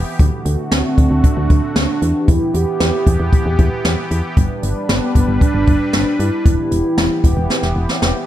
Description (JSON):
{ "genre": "synth-pop", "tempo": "115 BPM", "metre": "4/4", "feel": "straight", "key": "E minor", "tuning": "A4 = 440 Hz", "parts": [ { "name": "sweeping resonant pad", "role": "sustained chords", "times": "0.0-8.3 s", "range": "D3 to B4", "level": "-24 LUFS", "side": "equal", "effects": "chorus" }, { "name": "solid FM bass", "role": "bass", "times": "0.0-8.1 s", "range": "E1 to G2", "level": "-18 LUFS", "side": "equal", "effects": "none" }, { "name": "jazz brush drum kit", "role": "drums", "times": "0.2-8.1 s", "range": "hi-hat, kick drum, snare drum", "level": "-16 LUFS", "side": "equal", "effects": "none" }, { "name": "hollow clarinet-like synth lead", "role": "melody", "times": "0.7-8.0 s", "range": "B3 to G4", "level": "-20 LUFS", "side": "right 1 dB", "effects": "chorus, tape echo" } ], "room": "small room ambience", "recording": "none", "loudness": "-13 LUFS", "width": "side -12 dB against mid", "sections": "0.0-8.3 A section", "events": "drum fill 7.5-8.3", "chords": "0.2 D; 2.0 Em; 4.4 G; 6.5 Em", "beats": "| 0.19 0.72 1.24 1.76 | 2.28 2.80 3.33 3.85 | 4.37 4.89 5.41 5.93 | 6.46 6.98 7.50 8.02" }